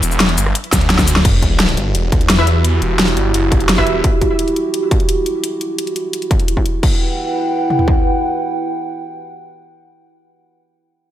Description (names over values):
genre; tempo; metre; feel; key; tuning
dark technical drum and bass; 172 BPM; 4/4; straight; E minor; A4 = 440 Hz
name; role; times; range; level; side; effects
snarling distorted saw bass; bass; 0.0-4.0 s; E1 to E2; -16 LUFS; equal; distortion, tube saturation, sidechain pumping
dubstep drum kit; drums; 0.0-6.9 s; crash cymbal, hi-hat, rim click, shaker, snare drum; -18 LUFS; left 1 dB; studio reverb
dubstep drum kit; drums; 0.7-8.0 s; kick drum, toms; -16 LUFS; equal; distortion, studio reverb
dark analog pad; sustained chords; 1.2-10.4 s; E4 to G5; -19 LUFS; right 2 dB; wide subtle chorus, sidechain pumping
sub drop; sound effects; 1.2-2.6 s; none; -23 LUFS; equal; none
orchestra-hit-like synth stab; stabs; 2.4-3.8 s; E4 to E5; -23 LUFS; equal; built-in reverb, tape echo
room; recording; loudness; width
light reverb; none; -13 LUFS; side -12 dB against mid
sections
0.0-1.2 A section; 1.2-6.8 B section; 6.8-9.6 C section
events
drop 0.0-1.2; drum fill 0.7-1.2; impact 1.2-2.6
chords
0.0 Em; 1.2 Emadd9